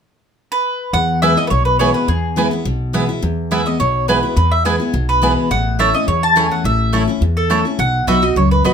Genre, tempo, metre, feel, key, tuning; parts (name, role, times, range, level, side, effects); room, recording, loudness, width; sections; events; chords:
bluegrass; 210 BPM; 4/4; straight; E major; A4 = 442 Hz
mandolin; melody; 0.5-8.7 s; G#4 to A5; -17 LUFS; equal
picked steel-string acoustic guitar; accompaniment; 0.9-8.7 s; E2 to F#4; -19 LUFS; left 2 dB
upright bass; bass; 0.9-8.7 s; A1 to E2; -19 LUFS; equal
mandolin; stabs; 1.2-8.7 s; A3 to B5; -19 LUFS; right 4 dB; slapback echo
light reverb; close, detailed microphones; -14 LUFS; side -7 dB against mid
0.9-8.7 A section
0.0 N.C.; 0.9 E; 5.5 A; 7.8 B